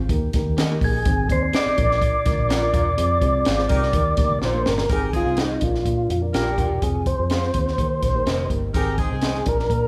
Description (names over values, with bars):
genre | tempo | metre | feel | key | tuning
uptempo 1960s-style soul | 125 BPM | 4/4 | straight | Eb major | A4 = 439 Hz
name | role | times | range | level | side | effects
mellow reed electric piano | accompaniment | 0.0-9.9 s | Ab2 to D5 | -31 LUFS | equal | fast tremolo
vintage muted fingered electric bass | bass | 0.0-9.9 s | Fb1 to Eb3 | -27 LUFS | equal | none
compact cocktail drum kit | drums | 0.1-9.8 s | hi-hat, kick drum, snare drum | -26 LUFS | equal | none
electric guitar at the edge of break-up | stabs | 0.6-9.4 s | F4 to F5 | -35 LUFS | equal | none
tonewheel organ | melody | 0.8-9.9 s | Eb4 to D5 | -26 LUFS | equal | overdrive, slow rotary speaker
glockenspiel with rubber mallets | second line | 0.8-4.4 s | Ab6 to D7 | -33 LUFS | equal | none
warm horn section | second line | 3.7-9.4 s | C4 to Bb4 | -32 LUFS | equal | none
room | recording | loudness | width
moderate large studio reverb, RT60 1.2 s | band playing live in one room | -21 LUFS | mono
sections
0.0-4.9 A section; 4.9-9.9 B section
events
band accent 3.0-4.9; drum fill 4.4-4.9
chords
0.1 Eb; 1.1 Ab; 1.8 Bb; 3.0 Fm; 3.9 Eb; 4.4 Bb; 4.9 Ab; 5.6 Bb; 6.8 Fm; 7.8 Eb; 8.7 Ab